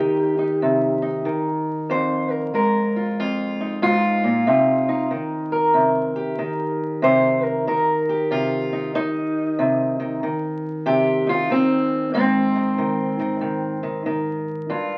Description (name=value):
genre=acoustic country blues, solo or duo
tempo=94 BPM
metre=4/4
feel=swing 63% on 8ths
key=C minor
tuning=A4 = 440 Hz
part: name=fingerpicked steel-string acoustic guitar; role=solo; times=0.0-15.0 s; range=F2 to C5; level=-21 LUFS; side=equal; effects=none
room=wet large studio reverb, RT60 1.2 s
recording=very old 78 rpm record, vinyl crackle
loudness=-21 LUFS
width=mono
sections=0.0-15.0 A section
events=steel-string acoustic guitar solo 0.0-15.0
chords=0.0 Cm; 1.9 Fm7; 4.5 Cm7; 12.1 Ab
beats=0.61 1.26 | 1.90 2.54 3.18 3.82 | 4.46 5.11 5.75 6.39 | 7.03 7.67 8.30 8.94 | 9.58 10.22 10.86 11.50 | 12.14 12.78 13.42 14.06 | 14.70